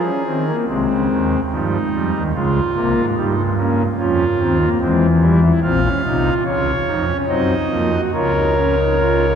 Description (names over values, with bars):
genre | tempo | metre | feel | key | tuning
classical, baroque-style 4-part fugue for pipe organ | 72 BPM | 3/4 | straight | unclear | A4 = 441 Hz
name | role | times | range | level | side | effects
pipe organ, foundations | solo | 0.0-9.4 s | Bb1 to F5 | -15 LUFS | equal | none
room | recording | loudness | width
wet cathedral reverb, RT60 5.0 s | dark, warm production | -15 LUFS | side -7 dB against mid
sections
0.7-9.4 A section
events
none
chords
0.0 Fm; 0.7 Abmaj7/C; 2.3 Db; 3.2 Gm7b5; 4.8 C/E; 5.6 Bbm; 7.3 Ebm/Gb; 8.1 Db69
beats
| 0.68 1.52 2.34 | 3.17 3.99 4.81 | 5.63 6.46 7.29 | 8.13 8.99